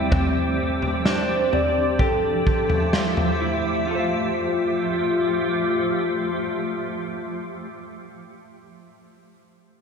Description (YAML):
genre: dream pop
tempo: 64 BPM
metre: 4/4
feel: straight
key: F major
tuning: A4 = 440 Hz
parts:
  - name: granular cloud pad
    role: sustained chords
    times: 0.0-7.4 s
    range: F3 to E5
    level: -25 LUFS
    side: right 1 dB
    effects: built-in reverb, lush chorus
  - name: mellow electric guitar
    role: arpeggios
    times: 0.0-7.6 s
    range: C4 to F5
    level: -28 LUFS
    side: left 2 dB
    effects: wide subtle chorus, ping-pong delay
  - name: raw garage drum kit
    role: drums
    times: 0.1-3.4 s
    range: kick drum, snare drum, toms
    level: -24 LUFS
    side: equal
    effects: gated reverb
  - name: warbly nostalgic lead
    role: melody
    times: 1.1-7.5 s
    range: F4 to D5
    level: -26 LUFS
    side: left 2 dB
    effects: chorus, ping-pong delay
room: moderate lush hall reverb, RT60 2.7 s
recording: bright 1980s-style digital production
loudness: -20 LUFS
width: side -6 dB against mid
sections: 0.0-3.9 A section; 3.9-7.6 B section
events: none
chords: 0.1 G7sus4; 2.0 Fmaj9; 3.9 Fadd9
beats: | 0.12 1.06 1.99 2.93 | 3.87 4.81 5.74 6.68